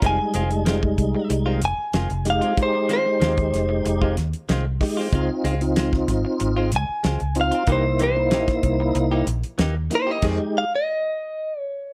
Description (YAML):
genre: straight-eighth soul blues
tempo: 94 BPM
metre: 4/4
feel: straight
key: F minor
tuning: A4 = 442 Hz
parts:
  - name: direct-recorded clean electric guitar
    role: melody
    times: 0.0-11.9 s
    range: C5 to Ab5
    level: -26 LUFS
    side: equal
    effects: none
  - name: tonewheel organ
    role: accompaniment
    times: 0.0-10.6 s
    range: G3 to G4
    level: -26 LUFS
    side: equal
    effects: overdrive, chorus vibrato, slow rotary speaker
  - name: direct-recorded clean electric guitar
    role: stabs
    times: 0.0-10.4 s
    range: Eb3 to Ab4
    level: -32 LUFS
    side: equal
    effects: subtle chorus
  - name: vintage muted fingered electric bass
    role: bass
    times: 0.0-10.4 s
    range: F1 to F2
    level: -27 LUFS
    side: equal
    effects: none
  - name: damped 70s drum kit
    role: drums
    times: 0.0-10.4 s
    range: crash cymbal, hi-hat, kick drum, snare drum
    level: -26 LUFS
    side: equal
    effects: none
room: light reverb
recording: none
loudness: -22 LUFS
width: mono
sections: 0.0-11.9 A section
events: stop 10.2-11.9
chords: 0.0 Fm7; 5.1 Dbmaj7; 7.7 C7#9; 10.2 Fm7 (rootless)